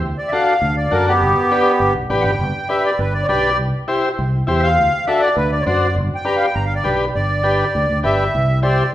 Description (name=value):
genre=latin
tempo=202 BPM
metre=4/4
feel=straight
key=G major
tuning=A4 = 440 Hz
part: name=fingered electric bass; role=bass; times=0.0-8.8 s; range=G1 to F#2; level=-20 LUFS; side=equal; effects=none
part: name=accordion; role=melody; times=0.2-8.9 s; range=B3 to Bb5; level=-18 LUFS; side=equal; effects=light tremolo tuning
part: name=combo organ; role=accompaniment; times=0.3-8.8 s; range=D4 to C5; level=-20 LUFS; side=left 1 dB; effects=none
room=wet large studio reverb, RT60 1.4 s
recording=heard from further back in the room, nothing above 10.3 kHz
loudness=-15 LUFS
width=side -13 dB against mid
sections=0.0-7.1 A section; 7.1-8.9 B section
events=accordion solo 0.0-7.1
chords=0.0 D; 1.2 G; 3.6 C; 4.8 D7; 6.0 G; 8.3 C